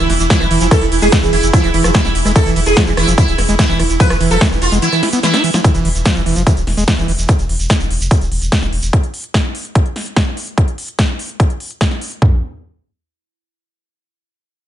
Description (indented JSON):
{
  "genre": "psychedelic trance",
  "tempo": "146 BPM",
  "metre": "4/4",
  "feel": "straight",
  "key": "unclear",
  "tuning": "A4 = 440 Hz",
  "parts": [
    { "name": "sitar", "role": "melody", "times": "0.0-5.4 s", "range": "E4 to B4", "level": "-18 LUFS", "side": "right 2 dB", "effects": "phaser, sidechain pumping, dub echo" },
    { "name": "pulsing gated texture", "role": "sustained chords", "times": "0.0-5.7 s", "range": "E3 to E4", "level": "-21 LUFS", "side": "right 5 dB", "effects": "chorus, built-in reverb, sidechain pumping" },
    { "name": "screaming distorted acid line", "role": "riff", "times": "0.0-7.1 s", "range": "E3 to E4", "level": "-19 LUFS", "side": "equal", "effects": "distortion, chorus, auto-pan, sidechain pumping, digital delay" },
    { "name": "round analog bass", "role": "bass", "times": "0.0-8.9 s", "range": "D1 to F1", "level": "-18 LUFS", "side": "equal", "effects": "none" },
    { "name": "big-room dance drum kit", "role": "drums", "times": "0.1-12.2 s", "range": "hi-hat, ride cymbal, rim click, snare drum", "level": "-20 LUFS", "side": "equal", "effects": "none" },
    { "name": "tube shaker", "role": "percussion", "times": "0.2-8.9 s", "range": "none", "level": "-27 LUFS", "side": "right 3 dB", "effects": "none" },
    { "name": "big-room dance drum kit", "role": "drums", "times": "0.3-12.3 s", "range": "kick drum, toms", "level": "-13 LUFS", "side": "equal", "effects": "none" }
  ],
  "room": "little or no reverb",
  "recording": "nothing above 10.6 kHz",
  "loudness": "-12 LUFS",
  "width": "side -11 dB against mid",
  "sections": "0.0-5.6 A section; 5.6-12.2 B section; 12.2-14.7 C section",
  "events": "drop 0.0-5.6; drum fill 5.0-5.6",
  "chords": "0.0 E5; 5.6 N.C."
}